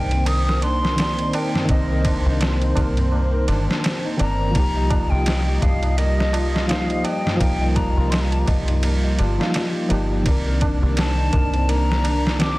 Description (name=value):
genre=trip hop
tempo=84 BPM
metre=4/4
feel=swing 58% on 16ths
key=C minor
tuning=A4 = 440 Hz
part: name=hollow concert flute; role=melody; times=0.0-12.6 s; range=Eb5 to Eb6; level=-28 LUFS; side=left 1 dB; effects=dub echo
part: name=barky reed electric piano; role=accompaniment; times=0.0-12.6 s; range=Eb3 to Eb5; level=-26 LUFS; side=equal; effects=tremolo
part: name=dark analog pad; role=sustained chords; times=0.0-12.6 s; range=Eb3 to Eb5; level=-28 LUFS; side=right 1 dB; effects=chorus
part: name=felt-muted upright piano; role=arpeggios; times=0.0-12.6 s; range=Bb3 to Eb5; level=-31 LUFS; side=left 3 dB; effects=dub echo
part: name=deep dub fingered electric bass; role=bass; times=0.0-12.6 s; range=G1 to C2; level=-21 LUFS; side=equal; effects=none
part: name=trip hop sampler-style drum kit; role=drums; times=0.1-12.6 s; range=kick drum, ride cymbal, snare drum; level=-24 LUFS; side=equal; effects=none
part: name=tabla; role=percussion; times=0.1-12.6 s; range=none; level=-33 LUFS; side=right 2 dB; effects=none
room=little or no reverb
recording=dense, heavily limited modern master, vinyl crackle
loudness=-18 LUFS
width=side -20 dB against mid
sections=0.0-12.6 A section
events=none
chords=0.0 Cm9; 4.5 Ebadd9/C; 10.3 Cm9